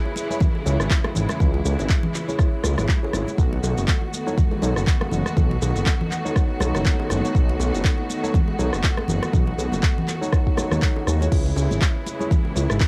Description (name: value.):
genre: afro house.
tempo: 121 BPM.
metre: 4/4.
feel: swing 57% on 16ths.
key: unclear.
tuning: A4 = 441 Hz.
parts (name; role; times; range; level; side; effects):
rich studio string section; sustained chords; 0.0-12.9 s; C#3 to F#4; -32 LUFS; equal; sidechain pumping, cassette tape.
tine electric piano; stabs; 0.0-12.7 s; D#4 to C#5; -32 LUFS; equal; overdrive, sidechain pumping, cassette tape, analog delay.
bongos; percussion; 0.1-12.9 s; none; -38 LUFS; equal; none.
deep house drum kit; drums; 0.2-12.9 s; crash cymbal, handclaps, rim click, shaker; -31 LUFS; equal; cassette tape.
congas; percussion; 0.2-12.9 s; none; -33 LUFS; equal; none.
electronic kick drum; drums; 0.4-12.9 s; none; -22 LUFS; equal; cassette tape.
dark detuned saw bass; bass; 0.7-12.8 s; F#1 to D#2; -25 LUFS; equal; sidechain pumping.
room: little or no reverb.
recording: home recording on cassette.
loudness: -22 LUFS.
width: mono.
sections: 0.0-12.9 A section.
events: none.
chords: 0.0 C#m; 3.4 B7; 11.3 C#m.